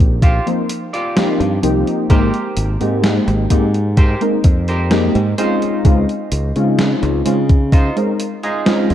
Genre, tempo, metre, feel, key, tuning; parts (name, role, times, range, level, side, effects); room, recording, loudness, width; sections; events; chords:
vaporwave; 64 BPM; 4/4; straight; A4 = 438 Hz
modern bright fingered electric bass; bass; 0.0-8.9 s; Ab1 to Db3; -18 LUFS; equal
gated 80s digital drum machine; drums; 0.0-8.9 s; hi-hat, snare drum; -21 LUFS; equal; gated reverb, gated reverb snare
semi-hollow electric guitar; riff; 0.2-8.9 s; Eb4 to D5; -24 LUFS; right 2 dB; lush chorus, analog delay
electronic kick drum; drums; 0.2-7.9 s; -12 LUFS; equal
warbly lo-fi synth keys; accompaniment; 0.5-8.9 s; F3 to C5; -18 LUFS; left 1 dB; wide subtle chorus, analog delay
light reverb, digital ambience; dark, warm production; -13 LUFS; side -11 dB against mid
0.0-8.9 A section
0.0 Eb69; 2.1 Abmaj9; 5.4 Dbmaj9